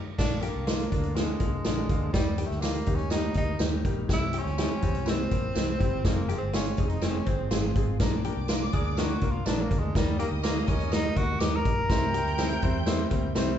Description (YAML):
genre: uptempo 1960s-style soul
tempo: 123 BPM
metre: 4/4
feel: straight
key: Eb major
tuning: A4 = 440 Hz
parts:
  - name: warm tenor saxophone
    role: melody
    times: 0.2-12.8 s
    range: G3 to Bb4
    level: -33 LUFS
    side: equal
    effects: none
  - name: clear upright piano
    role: accompaniment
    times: 0.2-13.5 s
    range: D3 to C5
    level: -34 LUFS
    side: left 2 dB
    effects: none
  - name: vintage muted fingered electric bass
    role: bass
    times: 0.2-13.6 s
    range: F1 to E2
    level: -32 LUFS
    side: right 1 dB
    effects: none
  - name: swinging big-band drum kit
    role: drums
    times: 0.2-13.5 s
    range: crash cymbal, hi-hat, kick drum, snare drum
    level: -27 LUFS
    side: equal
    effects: none
  - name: tambourine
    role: percussion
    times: 0.2-13.5 s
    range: none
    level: -45 LUFS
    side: right 5 dB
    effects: none
  - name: direct-recorded clean electric guitar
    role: riff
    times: 0.4-13.6 s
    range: Bb3 to G4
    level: -38 LUFS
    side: left 5 dB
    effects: spring reverb
  - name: congas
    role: percussion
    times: 0.4-13.6 s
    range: none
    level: barely audible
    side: none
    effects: none
  - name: warm studio string section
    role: second line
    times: 8.0-13.6 s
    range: D5 to G6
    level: -39 LUFS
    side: right 1 dB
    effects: none
room: moderate large studio reverb, RT60 1.1 s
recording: band playing live in one room, nothing above 7.9 kHz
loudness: -24 LUFS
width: side -10 dB against mid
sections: 0.2-13.6 A section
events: band accent 0.0; tenor saxophone solo 0.2-13.6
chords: 0.2 Bb; 2.1 Eb; 4.1 C; 6.0 Fm; 8.0 Bb; 9.9 Eb; 11.9 C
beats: | 0.18 0.67 1.16 1.65 | 2.14 2.63 3.12 3.60 | 4.09 4.58 5.07 5.56 | 6.05 6.54 7.02 7.51 | 8.00 8.49 8.97 9.46 | 9.95 10.44 10.93 11.41 | 11.90 12.39 12.88 13.36